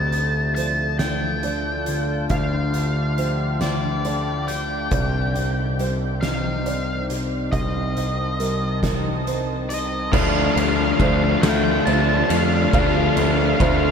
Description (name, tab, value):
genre	post-rock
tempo	46 BPM (dotted quarters)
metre	6/8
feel	straight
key	unclear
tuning	A4 = 435 Hz
part	octave-fuzz lead guitar	melody	0.0-13.9 s	D5 to A5	-27 LUFS	left 1 dB	distortion, diffuse ambient delay
part	evolving wavetable pad	sustained chords	0.0-13.9 s	C3 to A5	-29 LUFS	equal	phaser, built-in reverb
part	felt-muted upright piano	arpeggios	0.0-13.9 s	Bb4 to F5	-32 LUFS	right 5 dB	diffuse ambient delay
part	twelve-string electric guitar	arpeggios	0.0-13.9 s	C3 to Eb4	-30 LUFS	left 2 dB	none
part	growling picked electric bass	bass	0.0-13.9 s	C2 to F2	-24 LUFS	equal	overdrive
part	oversized low-tuned drum kit	drums	0.1-13.8 s	crash cymbal, hi-hat, kick drum, ride cymbal, snare drum	-26 LUFS	equal	none
part	cranked stack guitar	riff	10.1-13.9 s	D3 to F4	-24 LUFS	right 10 dB	overdrive
part	overdriven semi-hollow guitar	riff	10.1-13.9 s	D3 to D4	-23 LUFS	left 13 dB	none
room	moderate huge ambient reverb, RT60 7.6 s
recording	dreamy mix soaked in reverb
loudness	-19 LUFS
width	side -6 dB against mid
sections	0.0-10.1 A section; 10.1-13.9 B section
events	none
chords	0.0 Dm; 4.9 Cm; 10.1 Dm